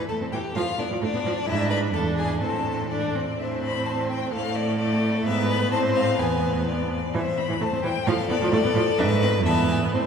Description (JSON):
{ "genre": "quick classical-period movement for string quartet", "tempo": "128 BPM", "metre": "2/4", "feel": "rubato", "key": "A minor", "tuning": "A4 = 441 Hz", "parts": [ { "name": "rich violin", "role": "second line", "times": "0.0-10.1 s", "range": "D4 to E5", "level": "-28 LUFS", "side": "left 4 dB", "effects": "none" }, { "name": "clear viola", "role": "accompaniment", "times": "0.0-10.1 s", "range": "E3 to D4", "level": "-27 LUFS", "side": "right 2 dB", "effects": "none" }, { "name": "warm violin", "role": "melody", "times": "0.1-10.1 s", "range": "D5 to B5", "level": "-29 LUFS", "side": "left 6 dB", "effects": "none" }, { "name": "rich cello", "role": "bass", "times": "0.1-10.1 s", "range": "E2 to A2", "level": "-26 LUFS", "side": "right 3 dB", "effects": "none" } ], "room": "wet cathedral reverb, RT60 6.4 s", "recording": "recorded in a church or concert hall", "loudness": "-21 LUFS", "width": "side -7 dB against mid", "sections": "0.0-3.4 A section; 3.4-10.1 B section", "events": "none", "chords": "0.0 N.C.; 0.6 Bm7b5/A; 1.5 E7/G#; 1.9 E7; 2.4 Am; 4.3 Dm/A; 5.3 E/G#; 5.7 Am; 6.2 E; 7.1 Am; 8.1 Bm7b5/A; 9.0 E/G#; 9.5 E5" }